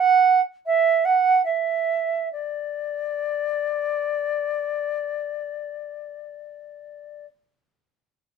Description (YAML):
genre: classical, baroque-style fantasia for unaccompanied flute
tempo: 69 BPM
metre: 3/4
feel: rubato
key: D major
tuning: A4 = 440 Hz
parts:
  - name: silver concert flute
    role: solo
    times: 0.0-7.3 s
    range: D5 to F#5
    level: -21 LUFS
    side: right 3 dB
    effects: none
room: light reverb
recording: minimal, uncompressed stereo recording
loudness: -21 LUFS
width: side -6 dB against mid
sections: 0.0-2.3 A section; 2.3-7.5 B section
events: slowing down 0.0-2.3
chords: none